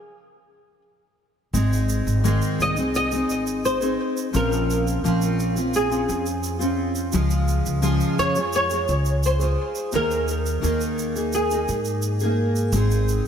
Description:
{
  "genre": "acoustic pop",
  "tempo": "86 BPM",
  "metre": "4/4",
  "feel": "straight",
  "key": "Ab major",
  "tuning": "A4 = 439 Hz",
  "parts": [
    { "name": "flamenco guitar", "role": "melody", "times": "0.0-12.3 s", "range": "Ab4 to Eb5", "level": "-25 LUFS", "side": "equal", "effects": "ensemble chorus, ping-pong delay" },
    { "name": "fingerpicked steel-string acoustic guitar", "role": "accompaniment", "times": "1.5-13.3 s", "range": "Ab2 to Ab4", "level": "-24 LUFS", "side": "equal", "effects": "double-tracked left and right" },
    { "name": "upright bass", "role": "bass", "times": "1.5-13.2 s", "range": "Ab1 to Ab2", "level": "-24 LUFS", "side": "equal", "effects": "none" },
    { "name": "egg shaker", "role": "percussion", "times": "1.5-13.2 s", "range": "none", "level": "-35 LUFS", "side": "right 7 dB", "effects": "none" }
  ],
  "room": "light reverb, small room ambience",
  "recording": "none",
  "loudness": "-20 LUFS",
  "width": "side -8 dB against mid",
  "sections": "0.0-1.5 A section; 1.5-13.3 B section",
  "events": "stop 0.0-1.5",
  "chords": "0.0 N.C.; 1.5 Ab; 4.3 Bbmadd9; 7.1 Db; 9.9 Ebsus4; 12.7 Ab"
}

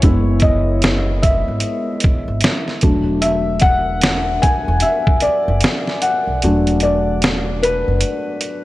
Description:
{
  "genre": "lo-fi hip hop",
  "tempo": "75 BPM",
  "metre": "4/4",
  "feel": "swing 60% on 16ths",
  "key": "unclear",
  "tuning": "A4 = 439 Hz",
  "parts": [
    { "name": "felt-muted upright piano", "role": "accompaniment", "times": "0.0-8.6 s", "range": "F#3 to G#5", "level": "-17 LUFS", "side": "left 1 dB", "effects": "cassette tape" },
    { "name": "upright bass", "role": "bass", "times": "0.0-8.0 s", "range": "E1 to B1", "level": "-20 LUFS", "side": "equal", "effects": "none" },
    { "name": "trip hop sampler-style drum kit", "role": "drums", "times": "0.0-8.6 s", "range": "hi-hat, kick drum, snare drum", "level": "-17 LUFS", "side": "equal", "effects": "none" }
  ],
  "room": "light reverb, small room ambience",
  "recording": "none",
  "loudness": "-14 LUFS",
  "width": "side -17 dB against mid",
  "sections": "0.0-8.6 A section",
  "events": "felt piano solo 0.0-8.6; kick muted 6.4-8.6",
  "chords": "0.0 F#9sus4; 2.8 E9sus4"
}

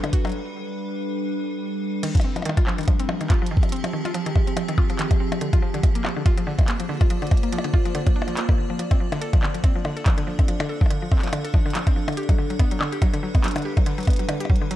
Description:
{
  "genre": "IDM",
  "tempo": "142 BPM",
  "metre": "4/4",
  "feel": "swing 56% on 16ths",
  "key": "unclear",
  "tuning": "A4 = 440 Hz",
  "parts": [
    { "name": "icy glass pad", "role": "sustained chords", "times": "0.0-14.8 s", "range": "F3 to F5", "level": "-29 LUFS", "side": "equal", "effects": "chorus, built-in reverb" },
    { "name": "mallet-like synth pluck", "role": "arpeggios", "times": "0.0-14.8 s", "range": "D3 to A4", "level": "-28 LUFS", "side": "left 1 dB", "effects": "chorus, tape echo" },
    { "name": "glitchy drum kit", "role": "drums", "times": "0.0-14.8 s", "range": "crash cymbal, handclaps, hi-hat, percussion blips", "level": "-31 LUFS", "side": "left 2 dB", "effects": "small room ambience" },
    { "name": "electronic kick drum", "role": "drums", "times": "0.1-14.6 s", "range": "none", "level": "-20 LUFS", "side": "equal", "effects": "small room ambience" }
  ],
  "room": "digital ambience",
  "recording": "dark, warm production",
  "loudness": "-20 LUFS",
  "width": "side -13 dB against mid",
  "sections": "0.0-2.0 A section; 2.0-14.8 B section",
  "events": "break 0.3-2.0",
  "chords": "0.0 G; 2.0 Fm7; 5.4 Bb7; 8.8 Dm7; 12.2 Gmaj7"
}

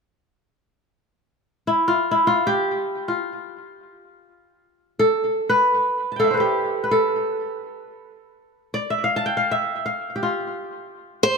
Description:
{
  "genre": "west african traditional",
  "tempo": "free time",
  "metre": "none",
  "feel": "none",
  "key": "F lydian",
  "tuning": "A4 = 441 Hz",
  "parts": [
    { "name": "kora", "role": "arpeggios", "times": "1.7-11.4 s", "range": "E4 to A5", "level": "-20 LUFS", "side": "equal", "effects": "tape echo" },
    { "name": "picked old ladder-braced acoustic guitar", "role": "melody", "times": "11.2-11.4 s", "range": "C5", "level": "-16 LUFS", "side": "equal", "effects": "none" }
  ],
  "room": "moderate recital hall reverb, RT60 1.6 s",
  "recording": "close, detailed microphones",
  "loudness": "-19 LUFS",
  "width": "side -4 dB against mid",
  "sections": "1.2-11.4 A section",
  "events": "kora solo 1.2-11.4",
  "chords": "1.2 F"
}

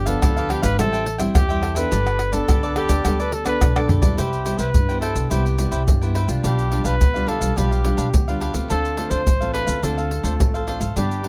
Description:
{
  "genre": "samba and choro",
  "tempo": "106 BPM",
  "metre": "4/4",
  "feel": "straight",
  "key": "C major",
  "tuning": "A4 = 438 Hz",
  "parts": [
    { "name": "warm trumpet", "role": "melody", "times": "0.0-11.3 s", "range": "G4 to C5", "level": "-28 LUFS", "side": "equal", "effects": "none" },
    { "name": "nylon-string guitar", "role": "accompaniment", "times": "0.0-11.3 s", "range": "G2 to A4", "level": "-29 LUFS", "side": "equal", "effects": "none" },
    { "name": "upright bass", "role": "bass", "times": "0.0-11.3 s", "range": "G1 to G2", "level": "-26 LUFS", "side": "equal", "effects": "none" },
    { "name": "cavaquinho", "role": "accompaniment", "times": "0.1-11.3 s", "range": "D4 to G5", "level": "-31 LUFS", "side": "equal", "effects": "none" },
    { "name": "maracas, surdo, pandeiro and tamborim", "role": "percussion", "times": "0.1-11.3 s", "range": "none", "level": "-24 LUFS", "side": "equal", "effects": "none" }
  ],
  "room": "little or no reverb",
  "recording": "close, detailed microphones",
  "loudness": "-20 LUFS",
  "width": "mono",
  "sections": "0.0-4.2 A section; 4.2-11.3 B section",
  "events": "drum fill 3.8-4.2",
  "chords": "0.0 G7; 0.8 Am7; 1.9 Gadd9; 4.2 Cmaj7; 6.4 G7/B; 8.7 Dm7"
}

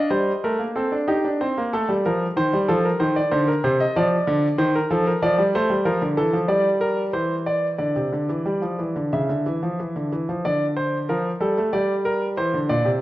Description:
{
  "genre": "classical, baroque-style two-part invention for grand piano",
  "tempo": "94 BPM",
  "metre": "4/4",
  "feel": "straight",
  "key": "D minor from 5.2 s",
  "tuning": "A4 = 441 Hz",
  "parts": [
    { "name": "clear concert grand piano", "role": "solo", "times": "0.0-13.0 s", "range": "Bb2 to E5", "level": "-19 LUFS", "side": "equal", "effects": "none" }
  ],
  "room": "wet recital hall reverb, RT60 1.6 s",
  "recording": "worn, warbling old tape, cassette tape, warbly pitch drift",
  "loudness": "-19 LUFS",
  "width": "side -16 dB against mid",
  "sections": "0.1-10.4 A section; 10.4-13.0 B section",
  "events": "none",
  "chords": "0.1 Eb/G; 1.4 C5; 2.7 F5; 3.9 Dm; 5.2 Dm/F; 6.5 Em7b5/G; 7.8 Cadd9 (rootless); 9.1 N.C.; 10.4 Dm; 11.7 Gm"
}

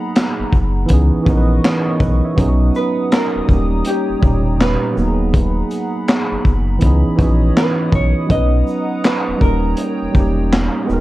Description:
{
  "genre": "lo-fi hip hop",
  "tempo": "81 BPM",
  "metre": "4/4",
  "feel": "swing 64% on 16ths",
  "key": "unclear",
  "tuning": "A4 = 440 Hz",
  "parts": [
    { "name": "tine electric piano", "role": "accompaniment", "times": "0.0-11.0 s", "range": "A#2 to E5", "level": "-19 LUFS", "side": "right 2 dB", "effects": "overdrive, low-pass filter" },
    { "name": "hollow soft pad", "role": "sustained chords", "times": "0.0-11.0 s", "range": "B3 to D#6", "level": "-28 LUFS", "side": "equal", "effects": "chorus, low-pass filter" },
    { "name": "crunchy breakbeat drum kit", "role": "drums", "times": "0.2-11.0 s", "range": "handclaps, hi-hat, kick drum, shaker, snare drum", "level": "-16 LUFS", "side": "equal", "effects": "none" },
    { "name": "sub bass with octave", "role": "bass", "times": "0.4-11.0 s", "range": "D#1 to C#2", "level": "-17 LUFS", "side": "equal", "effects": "none" },
    { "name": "vintage hollow-body jazz guitar", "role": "melody", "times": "2.8-10.9 s", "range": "G4 to D#5", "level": "-23 LUFS", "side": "equal", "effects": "low-pass filter, analog delay" }
  ],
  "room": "light reverb, studio reverb",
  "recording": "dark, warm production",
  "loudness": "-13 LUFS",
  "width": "side -17 dB against mid",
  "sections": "0.0-11.0 A section",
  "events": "none",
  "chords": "0.0 G#m9; 0.9 C#m9; 2.4 Bmaj7; 3.5 D#7; 5.0 G#m9/D#; 6.8 C#m9; 8.3 Bmaj7; 9.4 D#7"
}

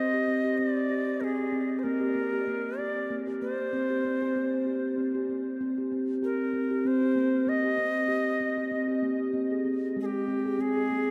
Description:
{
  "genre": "world meditative, meditative tuned percussion",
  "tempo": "96 BPM",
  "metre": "3/4",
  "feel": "swing 55% on 16ths",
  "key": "C minor",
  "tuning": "A4 = 440 Hz",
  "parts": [
    { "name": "bright Native American-style cedar flute", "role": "melody", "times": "0.0-11.1 s", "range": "G4 to Eb5", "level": "-34 LUFS", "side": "equal", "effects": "none" },
    { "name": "steel tongue drum", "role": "arpeggios", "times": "0.0-11.1 s", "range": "Ab3 to Ab4", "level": "-30 LUFS", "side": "equal", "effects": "diffuse ambient delay" }
  ],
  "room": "wet huge ambient reverb, RT60 8.4 s",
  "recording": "in a vast, echoing space",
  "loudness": "-28 LUFS",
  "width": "mono",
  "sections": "0.0-5.6 A section; 5.6-11.1 B section",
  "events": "none",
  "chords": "0.0 Cm; 1.9 Gm; 3.7 C5; 5.6 Cm; 9.4 Abmaj7"
}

